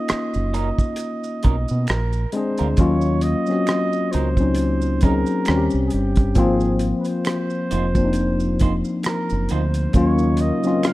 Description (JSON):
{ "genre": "R&B, neo-soul", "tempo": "67 BPM", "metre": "4/4", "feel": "swing 56% on 16ths", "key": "unclear", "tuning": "A4 = 441 Hz", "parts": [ { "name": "breathy flugelhorn", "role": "melody", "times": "0.0-10.9 s", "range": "G4 to F5", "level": "-28 LUFS", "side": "right 3 dB", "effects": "slapback echo" }, { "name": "tine electric piano", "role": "accompaniment", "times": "0.0-10.9 s", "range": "F3 to Ab4", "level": "-21 LUFS", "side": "left 2 dB", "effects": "none" }, { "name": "electric guitar through a small old amp", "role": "second line", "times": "0.1-10.9 s", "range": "F#3 to C5", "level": "-31 LUFS", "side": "right 5 dB", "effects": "none" }, { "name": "deep dub fingered electric bass", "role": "bass", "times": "0.1-10.5 s", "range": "F1 to B2", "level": "-22 LUFS", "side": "right 1 dB", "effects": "none" }, { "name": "cloth-damped thuddy drum kit", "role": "drums", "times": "0.1-10.9 s", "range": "hi-hat, kick drum, rim click", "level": "-21 LUFS", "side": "right 1 dB", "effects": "none" }, { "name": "finger snaps and maracas", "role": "percussion", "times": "0.1-10.9 s", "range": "none", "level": "-39 LUFS", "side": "right 6 dB", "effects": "none" }, { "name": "hollow soft pad", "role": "sustained chords", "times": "9.9-10.9 s", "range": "Db3 to Eb5", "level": "-29 LUFS", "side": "equal", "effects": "chorus" } ], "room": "studio reverb", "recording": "rough home demo mix", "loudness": "-18 LUFS", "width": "side -17 dB against mid", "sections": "0.0-2.8 A section; 2.8-10.9 B section", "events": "none", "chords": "0.0 Bmaj9; 1.9 Bb7; 2.8 Ebm7; 5.5 Eb6; 6.4 Ab69; 9.9 Ebm7" }